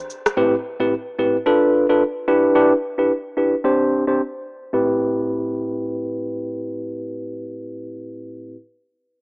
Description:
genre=afrobeats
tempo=110 BPM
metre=4/4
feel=swing 58% on 16ths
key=A minor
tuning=A4 = 438 Hz
part: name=bell-like tine electric piano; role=accompaniment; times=0.4-8.6 s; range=A2 to C5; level=-18 LUFS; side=equal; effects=medium stereo tremolo, low-pass filter, cassette tape
room=wet spring reverb, RT60 2.3 s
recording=home recording on cassette, small speaker sound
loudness=-17 LUFS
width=side -36 dB against mid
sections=0.0-4.7 A section; 4.7-9.1 B section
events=filter sweep on tine electric piano 0.0-4.7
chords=0.4 Am7; 1.5 Bm7b5; 2.3 Em7; 3.6 Gsus4; 4.7 Am7

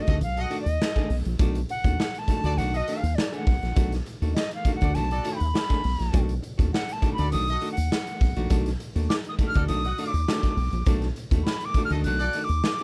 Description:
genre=funk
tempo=101 BPM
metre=4/4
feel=straight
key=B mixolydian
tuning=A4 = 441 Hz
part: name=silver concert flute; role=melody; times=0.0-12.8 s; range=D5 to F#6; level=-32 LUFS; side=equal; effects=none
part: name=archtop guitar, miked and amplified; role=accompaniment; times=0.0-12.8 s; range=D#3 to G#4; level=-34 LUFS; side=equal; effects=none
part: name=warm horn section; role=second line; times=0.1-12.4 s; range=F#4 to F#5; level=-38 LUFS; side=equal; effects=none
part: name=fingered electric bass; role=bass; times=0.1-12.6 s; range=A#1 to D#2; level=-28 LUFS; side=equal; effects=none
part: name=raw garage drum kit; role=drums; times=0.1-12.8 s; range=hi-hat, kick drum, snare drum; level=-29 LUFS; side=equal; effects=none
room=little or no reverb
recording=none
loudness=-25 LUFS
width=mono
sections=0.0-12.8 A section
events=flute solo 0.0-12.8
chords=0.0 B7#9

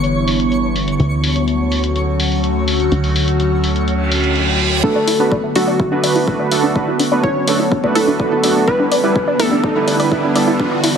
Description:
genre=progressive house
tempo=125 BPM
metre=4/4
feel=straight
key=unclear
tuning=A4 = 440 Hz
part: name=evolving wavetable pad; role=sustained chords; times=0.0-11.0 s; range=D3 to F#4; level=-19 LUFS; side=left 1 dB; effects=chorus, built-in reverb, phaser, sidechain pumping
part: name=plucky analog bass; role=bass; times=0.0-4.8 s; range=G1 to D2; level=-20 LUFS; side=equal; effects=sidechain pumping
part: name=electronic hi-hat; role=drums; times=0.0-10.9 s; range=none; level=-22 LUFS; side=left 2 dB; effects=sidechain pumping on hats, low-pass filter on hats, low-pass filter on room
part: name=twinkling granular texture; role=texture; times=0.0-4.8 s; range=C#5 to C#6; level=-26 LUFS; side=right 1 dB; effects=built-in reverb, sidechain pumping
part: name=reverse cymbal and riser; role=sound effects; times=4.0-11.0 s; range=none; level=-24 LUFS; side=right 4 dB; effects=none
part: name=plucky unison lead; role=melody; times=4.8-10.0 s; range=F#4 to C#5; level=-18 LUFS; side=equal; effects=sidechain pumping, digital delay
part: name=analog pluck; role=arpeggios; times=4.8-10.9 s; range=D4 to D5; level=-21 LUFS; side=right 1 dB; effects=chorus, sidechain pumping, digital delay
part: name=soft supersaw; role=stabs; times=4.8-10.7 s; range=G3 to B4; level=-18 LUFS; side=right 3 dB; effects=cassette tape, sidechain pumping, low-pass filter, digital delay
part: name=electronic kick drum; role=drums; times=4.8-10.7 s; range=none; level=-21 LUFS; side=equal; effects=high-pass filter on kick, high-pass filter on room
room=moderate lush hall reverb, RT60 1.9 s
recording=heavily compressed radio sound, multiband compression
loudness=-13 LUFS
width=side -7 dB against mid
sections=0.0-4.8 A section; 4.8-11.0 B section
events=filter sweep on ambient pad 0.0-4.8; reverse cymbal 4.0-4.8; build-up 4.8-11.0; riser 4.8-11.0; filter sweep on synth pluck 4.8-11.0; filter sweep on digital synth lead 4.8-11.0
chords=0.0 G6; 1.0 Dmaj7; 4.8 Bm7; 8.7 Em7

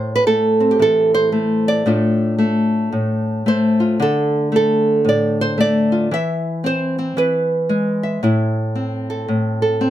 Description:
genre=folk, solo fingerstyle acoustic guitar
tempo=113 BPM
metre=4/4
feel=swing 62% on 8ths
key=A minor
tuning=A4 = 441 Hz
part: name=nylon-string guitar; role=solo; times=0.0-9.9 s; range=A2 to E5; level=-15 LUFS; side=equal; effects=none
room=little or no reverb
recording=close, detailed microphones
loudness=-15 LUFS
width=side -12 dB against mid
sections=0.0-9.9 A section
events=none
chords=0.0 Am; 1.9 F6/A; 6.1 C/E; 7.2 E; 8.2 Am

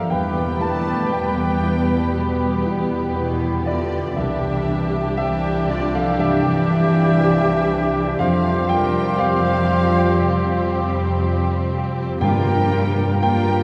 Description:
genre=cinematic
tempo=59 BPM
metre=4/4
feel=rubato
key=unclear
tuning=A4 = 443 Hz
part: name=muted symphonic violin section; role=melody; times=0.0-13.6 s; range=F4 to G4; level=-33 LUFS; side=equal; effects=none
part: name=dark clarinet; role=second line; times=0.0-13.6 s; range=F4 to G4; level=-35 LUFS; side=equal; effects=none
part: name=mellow cor anglais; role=second line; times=0.0-13.6 s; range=Bb4 to D5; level=-32 LUFS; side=equal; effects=none
part: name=mellow hollow silver concert flute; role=second line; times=0.0-13.6 s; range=E4 to C5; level=-30 LUFS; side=equal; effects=none
part: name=muted studio violin section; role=second line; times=0.0-13.6 s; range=B4 to A5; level=-32 LUFS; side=equal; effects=none
part: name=dark concert grand piano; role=accompaniment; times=0.0-13.6 s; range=C2 to A5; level=-28 LUFS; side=equal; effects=none
part: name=muted studio viola section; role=accompaniment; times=0.0-13.6 s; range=F3 to D4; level=-31 LUFS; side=equal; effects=none
part: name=mellow French horn section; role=sustained chords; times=0.0-13.6 s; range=G3 to F4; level=-30 LUFS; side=equal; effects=none
part: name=concert harp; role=arpeggios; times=0.0-13.6 s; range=E2 to E5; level=-31 LUFS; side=equal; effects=none
part: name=muted studio double bass section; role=bass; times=0.0-13.6 s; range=C2 to G2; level=-28 LUFS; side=equal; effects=none
part: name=muted symphonic cello section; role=bass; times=0.0-13.6 s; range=B2 to A3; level=-26 LUFS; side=equal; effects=none
part: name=timpani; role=percussion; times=12.2-13.6 s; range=G2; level=-28 LUFS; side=equal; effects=none
room=wet cathedral reverb, RT60 6.8 s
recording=none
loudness=-19 LUFS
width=mono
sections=0.0-13.6 A section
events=none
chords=0.1 Em; 4.2 Cadd9; 8.2 Fsus2; 12.2 Gm7

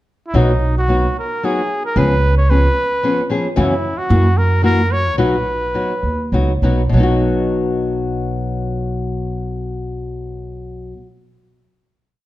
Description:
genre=mexican folk, mariachi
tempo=99-114 BPM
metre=3/4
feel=rubato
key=B major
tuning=A4 = 438 Hz
part: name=clear trumpet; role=melody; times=0.3-6.3 s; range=D#4 to C#5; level=-20 LUFS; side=equal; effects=none
part: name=nylon-string guitar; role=accompaniment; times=0.3-11.1 s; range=F#2 to G#4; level=-19 LUFS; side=left 2 dB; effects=none
part: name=upright bass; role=bass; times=0.3-10.9 s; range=B1 to F#2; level=-18 LUFS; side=right 1 dB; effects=none
room=moderate recital hall reverb, RT60 1.4 s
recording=dark, warm production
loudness=-15 LUFS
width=side -16 dB against mid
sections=0.0-0.3 pickup bar; 0.3-6.9 A section; 6.9-10.5 final chord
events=slowing down 3.6-6.9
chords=0.3 B; 2.0 C#7; 3.6 F#7sus4; 4.1 F#7; 5.2 B

